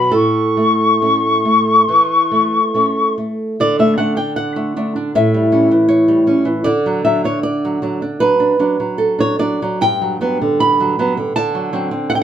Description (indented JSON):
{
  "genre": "romantic duo for flute and classical guitar",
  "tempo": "67-82 BPM",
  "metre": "4/4",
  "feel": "rubato",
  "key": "D major",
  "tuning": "A4 = 440 Hz",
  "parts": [
    { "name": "silver concert flute", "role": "melody", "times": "0.0-3.1 s", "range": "B5 to C#6", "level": "-13 LUFS", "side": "left 3 dB", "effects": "none" },
    { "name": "nylon-string guitar", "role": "accompaniment", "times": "0.0-12.2 s", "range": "G2 to B5", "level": "-14 LUFS", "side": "right 1 dB", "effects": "none" }
  ],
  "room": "moderate studio reverb, RT60 0.6 s",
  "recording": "band playing live in one room",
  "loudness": "-13 LUFS",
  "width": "side -9 dB against mid",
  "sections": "0.0-3.6 A section; 3.6-12.2 B section",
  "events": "none",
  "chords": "0.1 A; 3.6 D; 5.2 A7; 6.7 D; 9.8 Gmaj7; 11.4 D7"
}